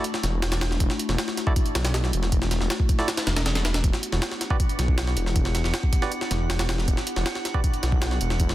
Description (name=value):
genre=drum and bass, jungle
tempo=158 BPM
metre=4/4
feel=straight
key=E minor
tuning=A4 = 440 Hz
part: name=warbly tape-like pad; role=sustained chords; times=0.0-8.5 s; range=A3 to G4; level=-33 LUFS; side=left 2 dB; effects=chorus, built-in reverb
part: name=barky tine electric piano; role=stabs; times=0.0-7.6 s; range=E4 to D5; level=-34 LUFS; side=right 3 dB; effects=medium stereo tremolo, dub echo
part: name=jungle sampler-style drum kit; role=drums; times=0.0-8.5 s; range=hi-hat, kick drum, snare drum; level=-24 LUFS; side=equal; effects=overdrive, studio reverb
part: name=detuned saw bass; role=bass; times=0.2-8.5 s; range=E1 to B1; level=-25 LUFS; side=equal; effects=none
part: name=drifting glass-harmonics texture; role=texture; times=4.1-8.5 s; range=F#5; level=-37 LUFS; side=right 7 dB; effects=chorus, built-in reverb
room=light reverb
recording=dense, heavily limited modern master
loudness=-22 LUFS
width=side -15 dB against mid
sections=0.0-8.5 A section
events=none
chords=0.0 Dadd9/E; 3.8 Em7